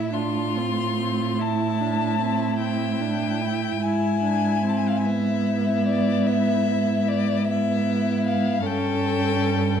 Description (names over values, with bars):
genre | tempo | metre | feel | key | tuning
classical, slow romantic movement for string quartet | 49 BPM (dotted quarters) | 12/8 | rubato | A minor | A4 = 442 Hz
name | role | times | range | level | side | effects
warm violin | melody | 0.0-9.8 s | D5 to C6 | -28 LUFS | left 9 dB | none
rich violin | second line | 0.0-9.8 s | E4 to A4 | -30 LUFS | left 2 dB | none
warm viola | accompaniment | 0.0-9.8 s | B3 to E4 | -27 LUFS | right 2 dB | none
warm cello | bass | 0.0-9.8 s | G2 to A2 | -24 LUFS | right 3 dB | none
room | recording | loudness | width
wet recital hall reverb, RT60 1.4 s | dark, warm production | -21 LUFS | side -8 dB against mid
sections
0.0-9.8 A section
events
none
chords
0.0 Am; 3.8 E/G#; 8.7 A7/G